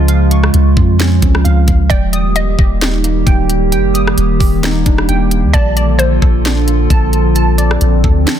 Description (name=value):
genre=hip hop, atmospheric cloud-rap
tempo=132 BPM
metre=4/4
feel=half-time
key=Eb lydian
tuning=A4 = 440 Hz
part: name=warbly tape-like pad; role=sustained chords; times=0.0-8.4 s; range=Db3 to A4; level=-16 LUFS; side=right 2 dB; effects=chorus, built-in reverb
part: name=glassy wavetable pluck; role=arpeggios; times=0.0-8.4 s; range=Ab3 to Eb6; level=-21 LUFS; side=right 1 dB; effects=chorus, ping-pong delay
part: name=soft 808-style bass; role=bass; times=0.0-8.3 s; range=D1 to F2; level=-13 LUFS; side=equal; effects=none
part: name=trap drum kit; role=drums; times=0.1-8.4 s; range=hi-hat, kick drum, rim click, snare drum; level=-14 LUFS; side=equal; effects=none
part: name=hollow square pluck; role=melody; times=1.9-2.8, 5.5-6.4 s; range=C5 to Eb5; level=-20 LUFS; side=left 1 dB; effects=chorus, ping-pong delay
room=little or no reverb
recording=dense, heavily limited modern master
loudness=-9 LUFS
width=side -10 dB against mid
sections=0.0-8.4 A section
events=none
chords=0.0 Dbmaj7; 1.9 Ebmaj7; 5.5 Bbmaj7